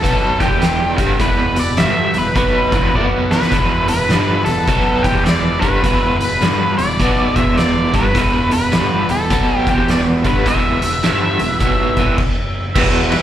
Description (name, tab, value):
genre	blues rock power trio and southern rock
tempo	104 BPM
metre	4/4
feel	swing 63% on 8ths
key	E minor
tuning	A4 = 440 Hz
part	octave-fuzz lead guitar	melody	0.0-12.2 s	G4 to E5	-19 LUFS	equal	distortion, plate reverb, slapback echo, tape echo
part	overdriven tonewheel organ	sustained chords	0.0-13.2 s	G3 to B4	-28 LUFS	right 3 dB	none
part	overdriven electric guitar	riff	0.0-13.2 s	E2 to B3	-17 LUFS	right 1 dB	tremolo, slapback echo
part	growling picked electric bass	bass	0.0-13.2 s	E1 to B1	-22 LUFS	equal	overdrive
part	oversized low-tuned drum kit	drums	0.0-13.2 s	crash cymbal, hi-hat, kick drum, ride cymbal, snare drum	-19 LUFS	equal	none
room	light reverb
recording	live gig heard through the venue's PA, club reverb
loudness	-13 LUFS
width	side -11 dB against mid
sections	0.0-12.8 A section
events	drum fill 2.9-3.5; stop 12.2-12.8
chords	0.0 Em; 2.9 B5; 3.5 Em; 12.2 N.C.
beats	0.04 0.62 | 1.20 1.78 2.36 2.94 | 3.52 4.10 4.68 5.25 | 5.83 6.41 6.99 7.57 | 8.15 8.73 9.31 9.88 | 10.46 11.04 11.62 12.19 | 12.77